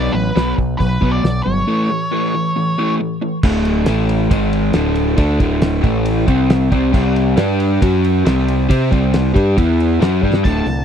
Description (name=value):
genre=classic rock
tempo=137 BPM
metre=4/4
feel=straight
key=D mixolydian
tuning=A4 = 440 Hz
part: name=octave-fuzz lead guitar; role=melody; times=0.0-2.9, 10.4-10.8 s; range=B4 to A5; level=-22 LUFS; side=equal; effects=wah, distortion
part: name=crunchy overdriven guitar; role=riff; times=0.0-10.8 s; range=D2 to C5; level=-16 LUFS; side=equal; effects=none
part: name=growling picked electric bass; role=bass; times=0.0-10.8 s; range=D1 to C3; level=-18 LUFS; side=equal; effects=overdrive
part: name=cloth-damped thuddy drum kit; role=drums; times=0.4-10.8 s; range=crash cymbal, hi-hat, kick drum, ride cymbal, snare drum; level=-18 LUFS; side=equal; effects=none
room=little or no reverb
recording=dry, close 1970s-style studio recording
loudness=-13 LUFS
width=side -8 dB against mid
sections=0.0-3.4 A section; 3.4-10.4 B section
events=drum fill 10.2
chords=0.0 B5; 1.7 A; 3.4 D5; 3.9 A5; 4.3 G#5; 4.7 D5; 5.8 A5; 6.3 C5; 7.4 G5; 7.8 F#5; 8.2 C5; 9.6 E5; 10.0 Dadd11/F#